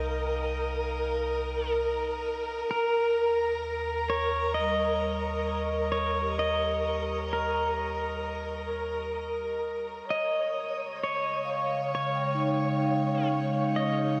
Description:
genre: ambient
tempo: 65 BPM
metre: 4/4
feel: straight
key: Db lydian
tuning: A4 = 440 Hz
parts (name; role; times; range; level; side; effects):
- pedal steel guitar; melody; 0.0-14.2 s; Bb4 to Eb5; -33 LUFS; equal; diffuse ambient delay
- vibraphone with medium mallets; arpeggios; 0.0-14.2 s; G3 to G5; -38 LUFS; equal; diffuse ambient delay
- warm sub bass; bass; 0.0-10.0 s; C2 to Eb2; -40 LUFS; equal; none
- dark symphonic violin section; texture; 0.0-14.2 s; Bb4 to Db5; -34 LUFS; equal; none
- analog drone; drone; 11.3-14.2 s; Db3 to Ab3; -33 LUFS; equal; chorus
room: wet shimmer reverb, RT60 8.3 s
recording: dark, warm production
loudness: -29 LUFS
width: mono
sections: 0.0-10.1 A section; 10.1-14.2 B section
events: fade-out on vibraphone 0.0-10.1; fade-out on sub bass 0.0-10.1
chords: 0.0 Cm; 2.7 Eb; 10.1 Db

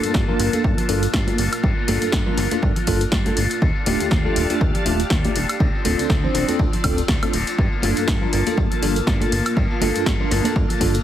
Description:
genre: filtered disco house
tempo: 121 BPM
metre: 4/4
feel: swing 56% on 16ths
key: G minor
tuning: A4 = 440 Hz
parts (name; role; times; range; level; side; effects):
- bell-like tine electric piano; accompaniment; 0.0-11.0 s; A3 to C5; -24 LUFS; right 1 dB; medium stereo tremolo, phaser, vintage 12-bit sampler grit, sidechain pumping, low-pass filter
- string machine, full ensemble; sustained chords; 0.0-11.0 s; Bb3 to C6; -28 LUFS; right 1 dB; ensemble chorus, sidechain pumping, low-pass filter
- electric guitar with an envelope filter; riff; 0.0-11.0 s; F3 to A4; -28 LUFS; left 5 dB; sidechain pumping, low-pass filter
- plucky analog bass; bass; 0.0-11.0 s; D1 to G2; -24 LUFS; equal; sidechain pumping, low-pass filter
- punchy analog drum machine; drums; 0.0-11.0 s; hi-hat, snare drum, woodblock; -26 LUFS; equal; overdrive, sidechain pumping on hats, studio reverb, sidechain pumping on perc
- tambourine and congas; percussion; 0.0-11.0 s; none; -30 LUFS; left 2 dB; sidechain pumping on perc, low-pass filter on perc
- electronic kick drum; drums; 0.1-10.9 s; none; -21 LUFS; equal; studio reverb
room: digital ambience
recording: heavily compressed radio sound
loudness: -17 LUFS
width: side -11 dB against mid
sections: 0.0-11.0 A section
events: none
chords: 0.0 Gm9; 3.6 Ebmaj9#11; 5.6 Dm7; 7.6 Gm9

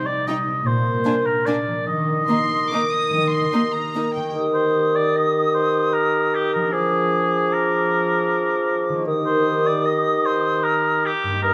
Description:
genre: classical, orchestral ballroom waltz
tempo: 138-167 BPM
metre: 3/4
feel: rubato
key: Eb major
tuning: A4 = 440 Hz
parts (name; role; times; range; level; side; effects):
- warm oboe; second line; 0.0-11.5 s; G4 to Eb5; -25 LUFS; equal; none
- concert harp; arpeggios; 0.0-11.5 s; G2 to Bb4; -29 LUFS; equal; none
- warm chamber violin section; melody; 0.3-4.3 s; G5 to Eb6; -31 LUFS; equal; none
- warm chamber violin section; second line; 0.3-4.0 s; D4 to Eb4; -32 LUFS; equal; none
- warm chamber viola section; accompaniment; 0.3-4.0 s; Bb3 to Eb4; -30 LUFS; equal; none
- dark chamber cello section; bass; 0.7-3.5 s; Bb2 to Eb3; -29 LUFS; equal; none
- silver concert flute; second line; 4.3-11.5 s; D6 to Eb6; -29 LUFS; equal; none
- mellow clarinet; second line; 4.4-11.5 s; G4 to Bb4; -30 LUFS; equal; none
- dark bassoon; accompaniment; 4.4-11.5 s; G2 to F3; -24 LUFS; equal; none
room: moderate concert hall reverb, RT60 2.0 s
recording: none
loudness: -20 LUFS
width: mono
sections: 0.0-4.3 A section; 4.3-11.5 A section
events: none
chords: 0.0 Cm; 0.7 Bb7; 1.9 Eb; 6.7 Bb7/F; 9.1 Eb

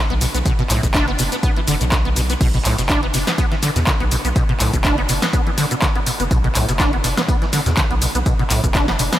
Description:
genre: acid house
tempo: 123 BPM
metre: 4/4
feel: swing 55% on 16ths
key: unclear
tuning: A4 = 441 Hz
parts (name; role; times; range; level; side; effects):
- acid bass, saw; riff; 0.1-9.2 s; A2 to D4; -21 LUFS; equal; overdrive, ensemble chorus, tape echo
- round analog bass; bass; 0.1-9.1 s; F#1 to E2; -22 LUFS; equal; sidechain pumping
- punchy analog drum machine; drums; 0.1-9.2 s; crash cymbal, handclaps, hi-hat, shaker, snare drum; -22 LUFS; equal; none
- dusty soul sampler-style drum kit; drums; 0.2-9.1 s; hi-hat, snare drum, tambourine; -33 LUFS; equal; none
- electronic kick drum; drums; 0.5-8.9 s; none; -19 LUFS; equal; none
room: moderate huge ambient reverb, RT60 7.3 s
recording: dreamy mix soaked in reverb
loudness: -15 LUFS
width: side -13 dB against mid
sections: 0.0-9.2 A section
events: none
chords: 0.0 B5

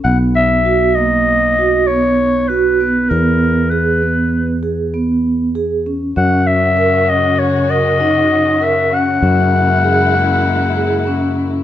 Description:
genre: contemporary instrumental, chamber music in an uneven meter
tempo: 98 BPM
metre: 5/4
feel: straight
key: unclear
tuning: A4 = 440 Hz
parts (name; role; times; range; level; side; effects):
- growling clarinet; melody; 0.0-11.6 s; A#4 to F#5; -15 LUFS; left 2 dB; none
- vibraphone with soft mallets; arpeggios; 0.0-11.6 s; A#3 to A#4; -17 LUFS; right 3 dB; none
- sustaining fretless electric bass; bass; 0.0-11.6 s; B1 to F#2; -18 LUFS; equal; none
- dark chamber string section; sustained chords; 6.2-11.6 s; C#3 to F#4; -21 LUFS; left 3 dB; none
room: light reverb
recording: close, detailed microphones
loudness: -12 LUFS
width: side -11 dB against mid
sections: 0.0-11.6 A section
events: none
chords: 0.0 Bmaj7; 3.1 E; 6.2 D#m7/F#; 9.2 F#9

